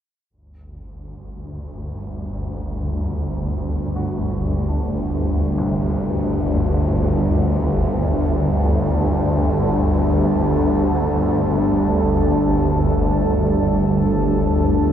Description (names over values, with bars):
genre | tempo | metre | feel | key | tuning
dark ambient drone | free time | none | none | unclear | A4 = 440 Hz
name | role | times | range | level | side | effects
deep dark ambient pad | sustained chords | 2.0-14.9 s | G3 to A5 | -21 LUFS | equal | chorus, built-in reverb
swarming drone | drone | 0.7-14.9 s | G1 to D2 | -19 LUFS | equal | built-in reverb
dark grand piano | arpeggios | 4.0-14.9 s | G1 to F#4 | -33 LUFS | left 2 dB | none
room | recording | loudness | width
wet cathedral reverb, RT60 5.6 s | none | -17 LUFS | side -9 dB against mid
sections
0.3-14.9 A section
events
none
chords
0.3 Gsus2